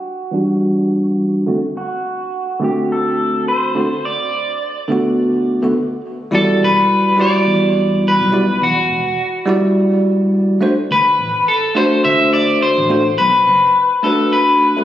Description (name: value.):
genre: sunset chillout.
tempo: 105 BPM.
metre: 4/4.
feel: swing 56% on 16ths.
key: E minor.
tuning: A4 = 440 Hz.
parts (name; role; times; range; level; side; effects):
electric guitar at the edge of break-up; melody; 0.0-14.8 s; F#4 to E5; -15 LUFS; left 1 dB; spring reverb, digital delay.
bell-like tine electric piano; accompaniment; 0.3-14.8 s; D3 to D5; -16 LUFS; equal; auto-pan, low-pass filter, digital delay.
fretless electric bass; bass; 6.3-13.6 s; E1 to E2; -22 LUFS; equal; none.
room: moderate plate reverb, RT60 2.5 s.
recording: recorded on a phone in the room, studio reverb, compression, low-pass filter.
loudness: -13 LUFS.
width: side -12 dB against mid.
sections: 0.0-6.3 A section; 6.3-14.8 B section.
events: filter sweep on tine electric piano 0.0-6.3; filter sweep 0.0-6.3.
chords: 0.0 Em9; 1.5 D7; 4.0 Bm7; 6.3 Em9; 10.6 D7; 13.2 Bm7.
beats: 0.04 0.61 1.19 | 1.76 2.33 2.90 3.47 | 4.04 4.62 5.19 5.76 | 6.33 6.90 7.47 8.04 | 8.62 9.19 9.76 10.33 | 10.90 11.47 12.04 12.62 | 13.19 13.76 14.33.